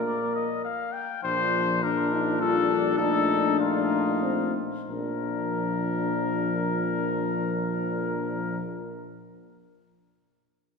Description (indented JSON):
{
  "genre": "classical, brass quintet",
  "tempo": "90-104 BPM",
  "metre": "3/4",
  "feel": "straight",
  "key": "Bb major",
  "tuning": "A4 = 440 Hz",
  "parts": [
    { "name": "mellow trumpet", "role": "second line", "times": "0.0-8.6 s", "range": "D4 to Bb4", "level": "-34 LUFS", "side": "right 3 dB", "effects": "none" },
    { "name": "mellow trombone", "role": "accompaniment", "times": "0.0-8.6 s", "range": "F3 to Bb3", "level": "-34 LUFS", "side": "equal", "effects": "none" },
    { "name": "clear trumpet", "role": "melody", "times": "0.1-8.6 s", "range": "F4 to G5", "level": "-29 LUFS", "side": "left 6 dB", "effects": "none" },
    { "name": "clear tuba", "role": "bass", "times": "1.2-8.6 s", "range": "Bb1", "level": "-31 LUFS", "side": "right 2 dB", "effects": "none" },
    { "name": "mellow French horn", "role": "accompaniment", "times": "1.8-8.6 s", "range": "C4 to F4", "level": "-29 LUFS", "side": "left 7 dB", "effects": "none" }
  ],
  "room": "wet concert hall reverb, RT60 2.3 s",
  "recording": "heard from further back in the room",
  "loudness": "-24 LUFS",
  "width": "side -4 dB against mid",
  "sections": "0.0-1.2 A section; 1.2-4.9 B section; 4.9-8.9 C section",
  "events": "slowing down 0.4-4.9",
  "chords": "0.0 Bb; 3.0 F7/Bb; 4.9 Bb"
}